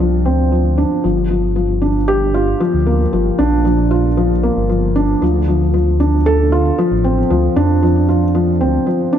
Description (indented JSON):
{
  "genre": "piano and strings electronica",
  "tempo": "115 BPM",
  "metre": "4/4",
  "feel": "straight",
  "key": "unclear",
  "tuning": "A4 = 440 Hz",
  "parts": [
    { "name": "felt-muted upright piano", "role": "riff", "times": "0.0-9.2 s", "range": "F3 to A4", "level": "-14 LUFS", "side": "equal", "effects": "low-pass filter, tape echo" },
    { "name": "dark detuned saw bass", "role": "bass", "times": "0.0-8.8 s", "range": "G1 to F2", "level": "-16 LUFS", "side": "equal", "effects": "none" }
  ],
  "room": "light reverb, studio reverb",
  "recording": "none",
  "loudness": "-12 LUFS",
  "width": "side -9 dB against mid",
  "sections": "0.0-9.2 A section",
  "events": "none",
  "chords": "0.0 Dm7; 1.0 Gm7; 5.2 Dm7",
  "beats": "0.00 0.52 | 1.04 1.56 2.08 2.61 | 3.13 3.65 4.17 4.69 | 5.22 5.74 6.26 6.78 | 7.30 7.82 8.35 8.87"
}